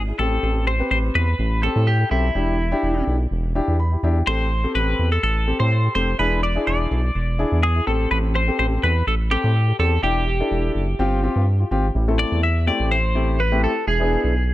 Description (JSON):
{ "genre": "dance-pop", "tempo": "125 BPM", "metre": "4/4", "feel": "straight", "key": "A minor", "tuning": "A4 = 441 Hz", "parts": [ { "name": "round analog bass", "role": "bass", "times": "0.0-14.5 s", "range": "E1 to A2", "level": "-20 LUFS", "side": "equal", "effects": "none" }, { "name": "warm grand piano", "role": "accompaniment", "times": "0.1-14.3 s", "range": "A3 to B5", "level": "-25 LUFS", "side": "left 2 dB", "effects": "none" }, { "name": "twelve-string electric guitar", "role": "melody", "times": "0.2-14.5 s", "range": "E4 to E5", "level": "-23 LUFS", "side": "equal", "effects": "phaser, digital delay" } ], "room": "studio reverb", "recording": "none", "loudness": "-18 LUFS", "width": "side -15 dB against mid", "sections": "0.0-12.0 A section; 12.0-14.5 B section", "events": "grand piano fill 3.6-4.3", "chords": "0.2 Am7; 2.4 Em7; 4.3 Am7; 6.2 E7; 7.9 Am7; 10.0 Em7; 11.0 G7sus4; 12.0 Am7; 13.9 E7" }